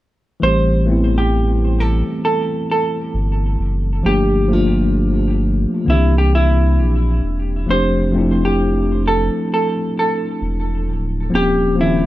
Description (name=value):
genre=hip hop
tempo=66 BPM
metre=4/4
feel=swing 64% on 16ths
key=A minor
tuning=A4 = 444 Hz
part: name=vintage hollow-body jazz guitar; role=melody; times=0.4-12.1 s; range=E4 to C5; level=-20 LUFS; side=right 1 dB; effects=low-pass filter, tape echo
part: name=mellow tine electric piano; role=accompaniment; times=0.4-12.1 s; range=D3 to G4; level=-19 LUFS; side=left 1 dB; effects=medium stereo tremolo, cassette tape, low-pass filter, tape echo
part: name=warm sub bass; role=bass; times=0.4-12.1 s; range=D1 to C2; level=-17 LUFS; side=equal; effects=none
room=little or no reverb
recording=echo-heavy mix, cassette tape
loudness=-14 LUFS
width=side -15 dB against mid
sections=0.4-12.1 A section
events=none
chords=0.4 Am9; 4.0 Gm7; 5.9 C9; 7.7 F69; 11.3 D#13